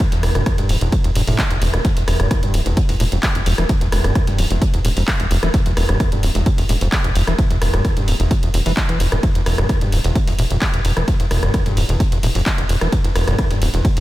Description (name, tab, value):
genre	driving peak-time techno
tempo	130 BPM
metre	4/4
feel	straight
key	E phrygian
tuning	A4 = 439 Hz
part	overdriven acid bass	riff	0.0-14.0 s	D2 to E3	-21 LUFS	equal	distortion, wide subtle chorus, sidechain pumping, ping-pong delay
part	electronic kick drum	drums	0.0-13.9 s	none	-18 LUFS	equal	overdrive
part	punchy analog drum machine	drums	0.0-14.0 s	handclaps, hi-hat, ride cymbal, rim click	-23 LUFS	equal	none
part	tight sequencer bass	bass	0.1-14.0 s	D1 to F1	-20 LUFS	equal	sidechain pumping
room	light reverb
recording	none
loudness	-15 LUFS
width	side -16 dB against mid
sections	0.0-14.0 A section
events	none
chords	0.0 E5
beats	| 0.00 0.46 0.92 1.39 | 1.85 2.31 2.77 3.23 | 3.69 4.15 4.62 5.08 | 5.54 6.00 6.46 6.92 | 7.38 7.85 8.31 8.77 | 9.23 9.69 10.15 10.62 | 11.08 11.54 12.00 12.46 | 12.92 13.38 13.85